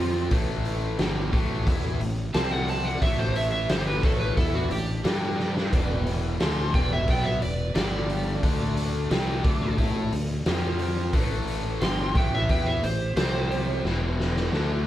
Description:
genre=blues rock power trio and southern rock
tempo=89 BPM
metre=4/4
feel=straight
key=unclear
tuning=A4 = 440 Hz
part: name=overdriven slide guitar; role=melody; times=0.0-13.8 s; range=F4 to C6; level=-30 LUFS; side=right 2 dB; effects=none
part: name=dark smooth lead guitar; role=second line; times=0.0-13.8 s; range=C4 to G#5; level=-38 LUFS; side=right 2 dB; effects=overdrive
part: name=raw garage guitar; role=riff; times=0.0-14.9 s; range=E2 to A4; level=-31 LUFS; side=left 2 dB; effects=overdrive
part: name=fuzz fingered electric bass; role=bass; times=0.0-14.8 s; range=E1 to A2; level=-28 LUFS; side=equal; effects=overdrive
part: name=raw garage drum kit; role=drums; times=0.3-14.7 s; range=hi-hat, kick drum, snare drum, splash cymbal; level=-26 LUFS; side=equal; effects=none
room=light reverb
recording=band playing live in one room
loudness=-23 LUFS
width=side -13 dB against mid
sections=0.0-14.9 A section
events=drum fill 5.4-5.7, 13.9-14.9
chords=0.3 A5; 2.3 C5; 3.0 A5; 5.0 G5; 5.7 E5; 7.8 G5; 8.4 D5; 10.5 F5; 11.1 A5; 13.2 C5; 13.9 E5

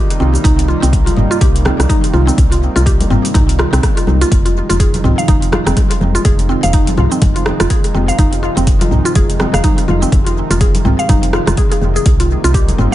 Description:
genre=afro house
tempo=124 BPM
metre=4/4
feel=swing 58% on 16ths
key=F minor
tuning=A4 = 437 Hz
part: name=warm analog pad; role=sustained chords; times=0.0-12.9 s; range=C3 to Eb4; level=-21 LUFS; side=equal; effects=chorus, sidechain pumping
part: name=mallet-like synth pluck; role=arpeggios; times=0.0-12.9 s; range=C4 to F5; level=-18 LUFS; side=equal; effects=chorus, vintage 12-bit sampler grit, sidechain pumping, tape echo
part: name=afro-pop drum kit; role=drums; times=0.1-12.9 s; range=cabasa, hi-hat, rim click, toms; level=-21 LUFS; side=right 1 dB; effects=studio reverb, tape echo
part: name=woody FM bass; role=bass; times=0.2-12.9 s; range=F1 to C2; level=-15 LUFS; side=equal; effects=sidechain pumping
part: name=congas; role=percussion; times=0.2-12.9 s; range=none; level=-24 LUFS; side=left 2 dB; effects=tape echo
part: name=electronic kick drum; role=drums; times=0.4-12.7 s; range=none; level=-14 LUFS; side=equal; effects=studio reverb
room=little or no reverb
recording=echo-heavy mix, nothing above 10.9 kHz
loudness=-10 LUFS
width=side -14 dB against mid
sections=0.0-12.9 A section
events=none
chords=0.0 Cm7; 4.3 Fm7; 12.1 Cm7

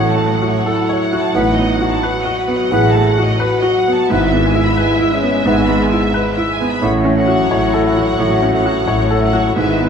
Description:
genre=classical, romantic movement for piano and orchestra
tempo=87 BPM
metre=4/4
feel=rubato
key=unclear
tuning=A4 = 440 Hz
part: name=clear baby grand piano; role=melody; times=0.0-9.9 s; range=G#2 to C#5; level=-18 LUFS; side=right 1 dB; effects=none
part: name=warm symphonic violin section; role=melody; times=0.0-9.9 s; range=E5 to F#5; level=-25 LUFS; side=left 1 dB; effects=none
part: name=mellow clarinet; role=second line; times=0.0-9.9 s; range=B4 to C#5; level=-26 LUFS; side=left 4 dB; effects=none
part: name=mellow hollow silver concert flute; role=second line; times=0.0-9.9 s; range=E5 to F#5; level=-24 LUFS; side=left 6 dB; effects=none
part: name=rich symphonic violin section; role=second line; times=0.0-9.9 s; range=A4 to B5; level=-25 LUFS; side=right 1 dB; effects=none
part: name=dark bassoon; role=accompaniment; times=0.0-9.9 s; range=G#3 to B3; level=-26 LUFS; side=right 3 dB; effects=none
part: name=warm symphonic viola section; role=accompaniment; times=0.0-9.9 s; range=F#3 to G#3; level=-26 LUFS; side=left 3 dB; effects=none
part: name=mellow French horn section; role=sustained chords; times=0.0-9.9 s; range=A3 to G#4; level=-19 LUFS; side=left 1 dB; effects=none
part: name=rich studio double bass section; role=bass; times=0.0-9.9 s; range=G#1 to A1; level=-22 LUFS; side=right 1 dB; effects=none
part: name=rich symphonic cello section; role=bass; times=0.0-9.9 s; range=G#2 to A2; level=-23 LUFS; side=equal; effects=none
room=moderate stone room reverb, RT60 1.4 s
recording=none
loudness=-12 LUFS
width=side -7 dB against mid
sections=0.0-9.9 A section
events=none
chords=0.0 F#m/A; 1.4 B7/A; 4.1 E/G#; 6.8 F#m/A

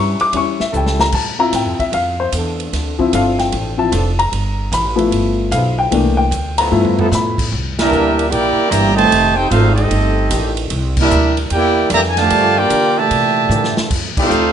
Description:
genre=jazz, big band swing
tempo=150 BPM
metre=4/4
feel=swing 66% on 8ths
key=C major from 7.5 s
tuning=A4 = 440 Hz
part: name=warm baby grand piano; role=accompaniment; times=0.0-7.4 s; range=E3 to D6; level=-16 LUFS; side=left 4 dB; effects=none
part: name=upright bass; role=bass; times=0.0-14.5 s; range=F1 to D3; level=-19 LUFS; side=equal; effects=none
part: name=swinging big-band drum kit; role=drums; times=0.2-14.4 s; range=crash cymbal, hi-hat, kick drum, ride cymbal, snare drum, toms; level=-23 LUFS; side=right 1 dB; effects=none
part: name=clear trombone section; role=sustained chords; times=0.7-14.5 s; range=D3 to D5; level=-23 LUFS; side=left 1 dB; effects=none
part: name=clear trumpet section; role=melody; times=7.8-14.5 s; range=C4 to Bb5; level=-15 LUFS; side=right 1 dB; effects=none
part: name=clear trombone section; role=second line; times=7.8-14.5 s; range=Bb2 to G4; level=-18 LUFS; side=right 4 dB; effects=none
room=moderate large studio reverb, RT60 1.2 s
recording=nothing above 10.5 kHz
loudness=-13 LUFS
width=side -9 dB against mid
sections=0.0-7.5 A section; 7.5-14.5 B section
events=grand piano solo 0.0-7.5; drum fill 0.7-1.1, 6.7-7.1, 13.5-13.9; band accent 7.7, 10.9, 14.1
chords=0.0 A7; 1.1 Dm7; 4.3 G13; 5.9 C13; 6.7 G13; 7.5 C9; 9.1 F13; 10.7 C13; 12.3 Gm7; 13.1 C13; 13.9 F13

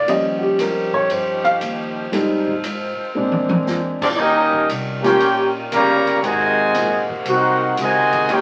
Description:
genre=jazz, big band swing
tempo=117 BPM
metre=4/4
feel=swing 68% on 8ths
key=Eb mixolydian, Eb major from 4.2 s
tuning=A4 = 439 Hz
part: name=dark baby grand piano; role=accompaniment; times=0.0-4.1 s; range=F3 to F5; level=-21 LUFS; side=equal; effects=none
part: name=edgy saxophone section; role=sustained chords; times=0.0-8.4 s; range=C3 to Bb4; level=-30 LUFS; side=equal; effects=none
part: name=upright bass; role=bass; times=0.0-8.4 s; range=G1 to Bb2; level=-35 LUFS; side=equal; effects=none
part: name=swinging big-band drum kit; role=drums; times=0.1-8.4 s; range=crash cymbal, hi-hat, kick drum, ride cymbal, snare drum, toms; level=-29 LUFS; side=equal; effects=none
part: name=warm trumpet section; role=melody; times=4.0-8.4 s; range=C4 to Bb5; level=-20 LUFS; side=equal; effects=none
part: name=clear trombone section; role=second line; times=4.0-8.4 s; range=C3 to G4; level=-20 LUFS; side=equal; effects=none
room=wet studio reverb, RT60 0.6 s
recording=very old 78 rpm record, vinyl crackle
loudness=-18 LUFS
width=mono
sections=0.0-4.2 A section; 4.2-8.4 B section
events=grand piano solo 0.0-4.2; drum fill 3.1-3.7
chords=0.1 Eb9; 2.1 Fm7; 3.1 Bb9; 4.2 Eb9; 6.2 Ab9

